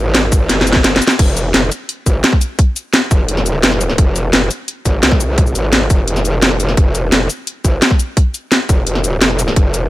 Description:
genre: dark technical drum and bass.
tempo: 172 BPM.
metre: 4/4.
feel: straight.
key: F phrygian.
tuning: A4 = 441 Hz.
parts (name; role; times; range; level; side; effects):
growl bass; bass; 0.0-9.9 s; F1 to C2; -16 LUFS; equal; chorus, overdrive, sidechain pumping.
drum and bass drum kit; drums; 0.1-9.8 s; cabasa, crash cymbal, hi-hat, snare drum; -14 LUFS; equal; none.
electronic kick drum; drums; 0.3-9.6 s; none; -12 LUFS; equal; overdrive.
room: little or no reverb.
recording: none.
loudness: -11 LUFS.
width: side -16 dB against mid.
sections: 0.0-1.2 A section; 1.2-9.9 A section.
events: drop 0.0-1.2, 1.2-9.9; drum fill 0.5-1.2.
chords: none.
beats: 0.14 0.49 0.84 | 1.19 1.54 1.89 2.24 | 2.59 2.94 3.28 3.63 | 3.98 4.33 4.68 5.03 | 5.38 5.73 6.08 6.42 | 6.77 7.12 7.47 7.82 | 8.17 8.52 8.87 9.21 | 9.56.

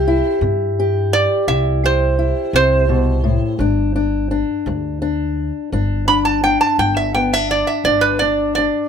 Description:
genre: acoustic country blues, solo or duo.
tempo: 57 BPM (dotted quarters).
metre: 12/8.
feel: straight.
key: G major.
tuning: A4 = 443 Hz.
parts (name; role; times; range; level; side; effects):
metal-body resonator slide guitar; melody; 0.0-8.9 s; B4 to B5; -16 LUFS; right 4 dB; none.
fingerpicked old ladder-braced acoustic guitar; accompaniment; 0.0-8.9 s; G2 to G4; -19 LUFS; left 4 dB; none.
upright bass; bass; 0.0-8.7 s; G1 to G2; -20 LUFS; equal; none.
room: moderate small room reverb, RT60 0.5 s.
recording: none.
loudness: -15 LUFS.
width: side -7 dB against mid.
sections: 0.0-8.9 A section.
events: none.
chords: 0.0 C; 3.6 G5.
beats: 0.43 1.49 2.55 | 3.61 4.67 5.73 6.79 | 7.85.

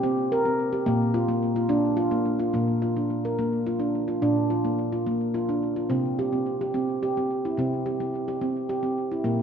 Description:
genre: world meditative, meditative tuned percussion.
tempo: 72 BPM (dotted quarters).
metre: 6/8.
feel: straight.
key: Bb major.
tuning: A4 = 440 Hz.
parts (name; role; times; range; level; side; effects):
handpan; solo; 0.0-9.4 s; Bb2 to Bb4; -23 LUFS; equal; ping-pong delay.
room: wet echo chamber reverb, RT60 1.8 s.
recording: none.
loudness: -23 LUFS.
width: side -7 dB against mid.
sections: 0.0-2.6 A section; 2.6-9.4 B section.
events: none.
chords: 0.0 C5; 0.9 Bb; 5.9 C5.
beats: 0.04 | 0.88 1.71 | 2.55 3.39 | 4.23 5.07 | 5.91 6.75 | 7.58 8.43 | 9.26.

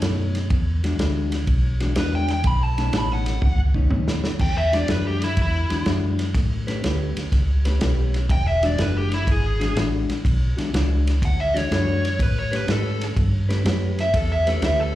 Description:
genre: electric blues shuffle.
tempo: 123 BPM.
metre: 4/4.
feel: swing 68% on 8ths.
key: E mixolydian.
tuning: A4 = 439 Hz.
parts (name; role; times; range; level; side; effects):
mellow electric guitar; riff; 0.0-15.0 s; B2 to B4; -28 LUFS; left 3 dB; slapback echo.
vintage muted fingered electric bass; bass; 0.0-14.9 s; E1 to A2; -22 LUFS; equal; none.
vintage drum kit; drums; 0.0-14.8 s; crash cymbal, kick drum, ride cymbal, snare drum, toms; -25 LUFS; equal; none.
dark smooth lead guitar; melody; 2.0-15.0 s; E4 to B5; -25 LUFS; equal; overdrive, slapback echo.
room: light reverb, studio ambience.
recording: live gig heard through the venue's PA, club reverb.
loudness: -19 LUFS.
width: side -14 dB against mid.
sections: 0.0-4.4 A section; 4.4-15.0 A section.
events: drum fill 3.4-4.4.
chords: 0.0 B9; 0.5 E9; 2.5 B9; 4.4 E9; 6.3 A9; 8.3 E9; 12.2 A9.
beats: 0.03 | 0.51 1.00 1.49 1.97 | 2.46 2.94 3.43 3.92 | 4.40 4.89 5.38 5.86 | 6.35 6.84 7.32 7.81 | 8.30 8.78 9.27 9.76 | 10.24 10.73 11.22 11.70 | 12.19 12.68 13.17 13.65 | 14.14 14.63.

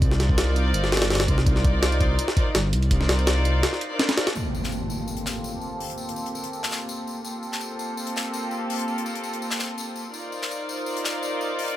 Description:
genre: drum and bass, jungle.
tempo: 166 BPM.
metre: 4/4.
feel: straight.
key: G minor.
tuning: A4 = 440 Hz.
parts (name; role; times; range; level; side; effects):
warm studio string section; sustained chords; 0.0-11.8 s; Bb3 to D5; -28 LUFS; equal; low-pass filter.
dark detuned saw bass; bass; 0.0-3.6 s; G1 to C2; -22 LUFS; equal; tube saturation.
jungle sampler-style drum kit; drums; 0.0-4.4 s; hi-hat, kick drum, snare drum; -22 LUFS; equal; studio reverb.
modern studio drum kit; drums; 4.4-11.8 s; hi-hat, snare drum, tambourine; -32 LUFS; left 3 dB; high-pass filter on hats, studio reverb, high-pass filter on snare, high-pass filter on perc, high-pass filter on room.
impact; sound effects; 4.4-5.8 s; none; -33 LUFS; equal; none.
room: light reverb.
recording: none.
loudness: -22 LUFS.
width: side -13 dB against mid.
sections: 0.0-4.4 A section; 4.4-11.8 B section.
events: break 3.6-4.4; impact 4.4-5.8; filter sweep on string section 4.4-11.8.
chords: 0.0 Cm11; 4.4 Gm11; 10.1 Cm11.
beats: | 0.02 0.38 0.74 1.11 | 1.47 1.83 2.19 2.55 | 2.91 3.27 3.64 4.00 | 4.36 4.72 5.08 5.44 | 5.80 6.17 6.53 6.89 | 7.25 7.61 7.97 8.34 | 8.70 9.06 9.42 9.78 | 10.14 10.50 10.87 11.23 | 11.59.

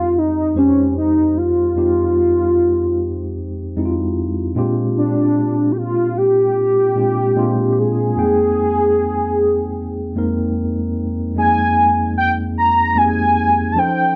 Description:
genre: R&B.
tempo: 75 BPM.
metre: 4/4.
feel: swing 64% on 16ths.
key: F minor.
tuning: A4 = 439 Hz.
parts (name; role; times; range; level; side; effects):
warm velvety synth lead; melody; 0.0-14.2 s; Db4 to Bb5; -18 LUFS; equal; chorus.
mellow tine electric piano; accompaniment; 0.0-14.2 s; F2 to G5; -22 LUFS; equal; none.
room: moderate studio reverb, RT60 0.6 s.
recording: none.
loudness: -17 LUFS.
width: mono.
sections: 0.0-11.4 A section; 11.4-14.2 B section.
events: none.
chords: 0.0 Fm9; 4.6 Bb13; 7.4 Bb9; 8.2 Fm11.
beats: 0.16 0.96 | 1.76 2.56 3.36 4.16 | 4.96 5.76 6.56 7.36 | 8.16 8.96 9.76 10.56 | 11.36 12.16 12.96 13.76.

